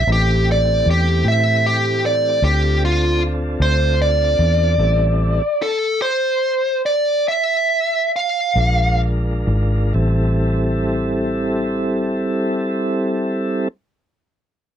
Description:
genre	slow blues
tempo	42-51 BPM (dotted quarters)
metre	12/8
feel	straight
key	A minor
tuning	A4 = 440 Hz
part	dark smooth lead guitar	melody	0.0-9.0 s	F4 to F5	-17 LUFS	right 1 dB	overdrive, slapback echo
part	tonewheel organ	sustained chords	0.0-13.7 s	E3 to Bb4	-22 LUFS	equal	slow rotary speaker
part	vintage muted fingered electric bass	bass	0.0-13.7 s	Ab1 to A2	-18 LUFS	equal	none
room	little or no reverb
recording	dry, close 1970s-style studio recording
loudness	-16 LUFS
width	side -9 dB against mid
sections	0.0-10.0 A section; 10.0-14.8 B section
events	lead electric guitar solo 0.0-10.0; slowing down 3.2-10.0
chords	0.1 Am7; 2.4 Dm7; 4.8 Am7; 8.6 Bb7; 10.0 Am7

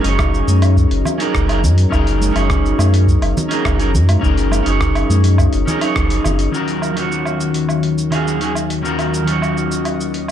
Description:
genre	sunset chillout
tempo	104 BPM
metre	4/4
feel	straight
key	F# major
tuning	A4 = 440 Hz
part	electric guitar at the edge of break-up	accompaniment	0.0-10.3 s	D#3 to C#5	-19 LUFS	moving between left 7 dB and right 3 dB	auto-pan, digital delay
part	lush unison pad	sustained chords	0.0-10.3 s	D#2 to D#5	-22 LUFS	left 1 dB	chorus
part	warm sub bass	bass	0.0-6.5 s	F#1 to F#2	-15 LUFS	equal	none
part	dusty soul sampler-style drum kit	drums	0.0-10.3 s	hi-hat, rim click, shaker, woodblock	-24 LUFS	right 1 dB	none
part	electronic kick drum	drums	0.2-6.1 s	none	-19 LUFS	equal	none
part	congas	percussion	0.5-6.4 s	none	-26 LUFS	right 1 dB	none
room	light reverb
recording	dark, warm production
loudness	-13 LUFS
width	side -10 dB against mid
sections	0.0-6.5 A section; 6.5-10.3 B section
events	band accent 6.0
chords	0.0 F#6; 6.5 D#m7

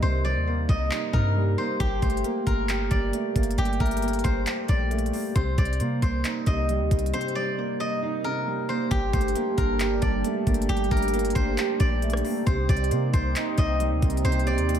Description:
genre	hip hop, trap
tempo	135 BPM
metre	4/4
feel	half-time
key	G minor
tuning	A4 = 441 Hz
part	steel-string zither	melody	0.0-14.8 s	G4 to Eb5	-29 LUFS	left 1 dB	ping-pong delay
part	dark baby grand piano	accompaniment	0.0-14.8 s	C3 to G4	-29 LUFS	right 3 dB	lush chorus
part	clean 808-style bass	bass	0.0-14.8 s	G1 to C3	-26 LUFS	equal	none
part	trap drum kit	drums	0.7-14.8 s	handclaps, hi-hat, kick drum, rim click	-27 LUFS	equal	none
part	dark analog pad	sustained chords	8.9-14.8 s	C3 to A5	-32 LUFS	right 2 dB	chorus
room	light reverb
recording	none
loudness	-22 LUFS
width	side -9 dB against mid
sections	0.0-8.9 A section; 8.9-14.8 B section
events	break 0.0-1.8, 7.1-8.9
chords	0.0 Cm7; 1.8 Gmadd9; 5.4 Cm7; 8.9 Gmadd9; 12.5 Cm7

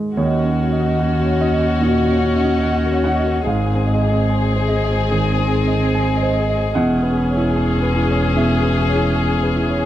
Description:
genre	neoclassical piano and strings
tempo	73 BPM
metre	4/4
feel	rubato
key	Eb dorian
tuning	A4 = 444 Hz
part	warm concert grand piano	accompaniment	0.0-9.9 s	Eb2 to Ab5	-20 LUFS	right 2 dB	none
part	rich chamber violin section	melody	0.2-9.9 s	Gb4 to Ab4	-22 LUFS	left 6 dB	none
part	clear viola	accompaniment	0.2-9.9 s	C4 to Db4	-25 LUFS	right 3 dB	none
part	concert harp	arpeggios	0.2-9.9 s	Eb4 to Ab5	-26 LUFS	right 2 dB	tape echo
part	rich double bass	bass	0.2-9.9 s	E1 to Eb2	-20 LUFS	equal	none
room	studio ambience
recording	dry, close 1970s-style studio recording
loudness	-15 LUFS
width	side -12 dB against mid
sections	0.2-9.9 A section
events	none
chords	0.2 Ebm7; 3.5 Ab; 6.8 E6

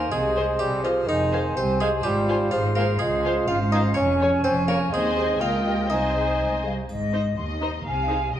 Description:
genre	cinematic, playful, whimsical film cue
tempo	125 BPM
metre	2/4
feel	straight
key	Ab major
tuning	A4 = 440 Hz
part	harpsichord	melody	0.0-6.6 s	Eb4 to F5	-31 LUFS	right 1 dB	none
part	mellow clarinet	second line	0.0-6.6 s	Bb3 to Ab4	-31 LUFS	left 1 dB	none
part	small flute group	second line	0.0-8.4 s	Eb5 to C6	-31 LUFS	left 1 dB	none
part	warm oboe	second line	0.0-6.6 s	C5 to Eb5	-33 LUFS	equal	none
part	clear bassoon	accompaniment	0.0-6.6 s	Eb3 to F4	-25 LUFS	right 1 dB	none
part	dark studio double bass section	bass	0.0-8.4 s	F1 to Eb2	-29 LUFS	right 1 dB	none
part	rich studio cello section	bass	0.0-8.4 s	C2 to C3	-29 LUFS	equal	none
part	rich studio violin section	melody	0.4-8.2 s	C5 to Ab5	-36 LUFS	left 5 dB	none
part	rich studio violin section	second line	0.4-8.4 s	Db5 to F5	-35 LUFS	left 4 dB	none
part	rich studio viola section	accompaniment	0.4-8.2 s	Eb4 to Db5	-34 LUFS	right 1 dB	none
part	dark French horn section	sustained chords	0.4-6.7 s	F4 to Eb5	-34 LUFS	left 3 dB	none
part	triangle	percussion	6.9-7.8 s	none	-55 LUFS	left 2 dB	none
room	wet recital hall reverb, RT60 1.4 s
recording	worn, warbling old tape, cassette tape, warbly pitch drift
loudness	-20 LUFS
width	side -10 dB against mid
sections	0.0-6.9 A section; 6.9-8.4 A section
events	none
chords	0.1 Ab/C; 1.1 Fm7; 2.0 Fm/Ab; 3.0 Dbmaj7; 4.0 Db/F; 4.9 Ab/Eb; 5.4 Eb7/Db; 5.9 Ab/C; 6.9 Ab; 7.9 Ab/C

